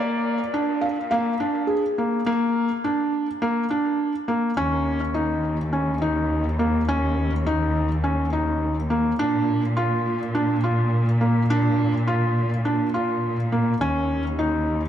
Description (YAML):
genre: piano and strings electronica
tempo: 104 BPM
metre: 4/4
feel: straight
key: unclear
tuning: A4 = 440 Hz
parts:
  - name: felt-muted upright piano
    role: melody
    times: 0.0-2.3 s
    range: Ab4 to F5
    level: -26 LUFS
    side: equal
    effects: digital delay
  - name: felt-muted upright piano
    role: riff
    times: 0.0-14.8 s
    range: Bb3 to F4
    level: -23 LUFS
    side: equal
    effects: digital delay
  - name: muted studio cello section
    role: bass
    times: 0.0-14.9 s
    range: Eb2 to Bb2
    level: -24 LUFS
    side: equal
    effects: high-pass filter
room: moderate echo chamber reverb, RT60 2.5 s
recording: none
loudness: -20 LUFS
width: side -10 dB against mid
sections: 0.0-4.6 A section; 4.6-14.9 B section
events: build-up 0.0-4.6; drop 4.6-14.9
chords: 0.0 Bb; 4.6 Eb5; 9.2 Bb; 13.8 Eb5